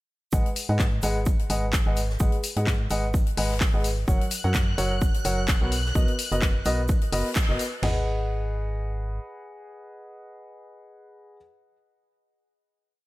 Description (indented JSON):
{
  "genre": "piano house",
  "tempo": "128 BPM",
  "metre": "4/4",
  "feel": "swing 56% on 16ths",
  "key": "G# minor",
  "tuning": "A4 = 440 Hz",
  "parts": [
    { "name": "dark grand piano", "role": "riff", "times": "0.3-11.4 s", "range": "F#3 to F#5", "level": "-30 LUFS", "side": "equal", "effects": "sidechain pumping, dub echo" },
    { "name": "organ-like FM bass", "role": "bass", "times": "0.3-9.2 s", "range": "F#1 to G#2", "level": "-27 LUFS", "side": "equal", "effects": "sidechain pumping" },
    { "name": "big rock drum kit", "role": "drums", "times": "0.3-7.7 s", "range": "hi-hat, shaker, snare drum", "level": "-39 LUFS", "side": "equal", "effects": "sidechain pumping on hats, high-pass filter on hats, high-pass filter on snare, sidechain pumping on perc, high-pass filter on perc, high-pass filter on room" },
    { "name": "house drum kit", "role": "drums", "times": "0.3-8.0 s", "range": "crash cymbal, kick drum, snare drum, toms", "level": "-24 LUFS", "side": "equal", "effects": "none" },
    { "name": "house drum kit", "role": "drums", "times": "0.6-7.7 s", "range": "handclaps, hi-hat", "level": "-31 LUFS", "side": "left 2 dB", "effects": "none" },
    { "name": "string machine, violins", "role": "sustained chords", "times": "4.1-7.8 s", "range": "F#6", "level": "-36 LUFS", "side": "equal", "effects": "ensemble chorus, sidechain pumping" }
  ],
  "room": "small room ambience",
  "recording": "none",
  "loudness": "-22 LUFS",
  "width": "side -18 dB against mid",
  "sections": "0.3-7.8 groove; 7.8-11.6 final chord",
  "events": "band accent 7.4",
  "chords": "0.3 G#m7; 4.1 F#; 5.7 Bmaj7; 7.8 G#m7",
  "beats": "| 0.33 0.80 1.27 1.73 | 2.20 2.67 3.14 3.61 | 4.08 4.55 5.02 5.48 | 5.95 6.42 6.89 7.36 | 7.83 8.30 8.77 9.23 | 9.70 10.17 10.64 11.11"
}